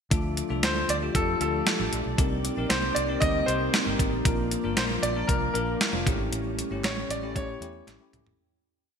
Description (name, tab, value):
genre	1980s-style pop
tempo	116 BPM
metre	4/4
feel	straight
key	unclear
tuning	A4 = 440 Hz
part	bell-like tine electric piano	accompaniment	0.1-8.4 s	A3 to C5	-31 LUFS	left 3 dB	lush chorus
part	ensemble organ-string	sustained chords	0.1-8.4 s	C3 to D5	-35 LUFS	right 1 dB	ensemble chorus
part	vintage muted fingered electric bass	bass	0.1-8.4 s	F1 to A2	-33 LUFS	equal	none
part	clean 12-bit digital drum machine	drums	0.1-8.4 s	hi-hat, kick drum, snare drum, toms	-27 LUFS	equal	overdrive, gated reverb
part	bright concert grand piano	melody	0.6-8.1 s	A4 to Eb5	-30 LUFS	right 1 dB	ping-pong delay
part	group handclap	percussion	4.8-8.0 s	none	-43 LUFS	right 5 dB	none
room	moderate lush hall reverb, RT60 1.8 s, digital ambience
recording	bright 1980s-style digital production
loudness	-24 LUFS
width	side -6 dB against mid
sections	0.1-8.4 pre-chorus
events	fade-out 6.3-8.4; drum fill 7.9-8.4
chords	0.1 Dm; 2.2 Cm7; 4.3 Bb; 6.1 A7